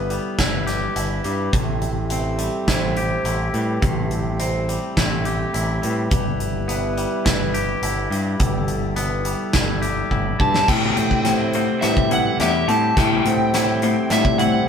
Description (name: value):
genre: post-rock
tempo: 105 BPM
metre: 4/4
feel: straight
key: unclear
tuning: A4 = 439 Hz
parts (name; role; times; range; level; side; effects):
- hand-pumped harmonium; sustained chords; 0.0-14.7 s; G3 to B4; -29 LUFS; right 2 dB; none
- twangy electric guitar; arpeggios; 0.0-14.7 s; A2 to G4; -27 LUFS; left 2 dB; none
- vibraphone with medium mallets; arpeggios; 0.0-14.7 s; A4 to G5; -31 LUFS; right 2 dB; none
- growling picked electric bass; bass; 0.0-14.6 s; G1 to A2; -25 LUFS; equal; overdrive
- huge arena drum kit; drums; 0.1-14.5 s; crash cymbal, hi-hat, kick drum, snare drum; -23 LUFS; equal; none
- overdriven slide guitar; melody; 10.4-14.7 s; E5 to A5; -22 LUFS; equal; none
- crunchy overdriven guitar; riff; 10.7-14.7 s; A3 to E4; -22 LUFS; left 4 dB; none
room: wet stone room reverb, RT60 1.0 s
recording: band playing live in one room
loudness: -18 LUFS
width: side -7 dB against mid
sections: 0.0-10.7 A section; 10.7-14.7 B section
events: drum fill 10.1-10.7, 10.7-14.7; build-up 10.7-14.7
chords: 0.0 Em/G; 1.5 Am7; 6.1 Em/G; 10.7 Am7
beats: 0.39 0.96 | 1.54 2.11 2.68 3.26 | 3.83 4.40 4.97 5.54 | 6.12 6.69 7.26 7.83 | 8.40 8.97 9.54 10.12 | 10.69 11.26 11.83 12.40 | 12.97 13.54 14.11 14.68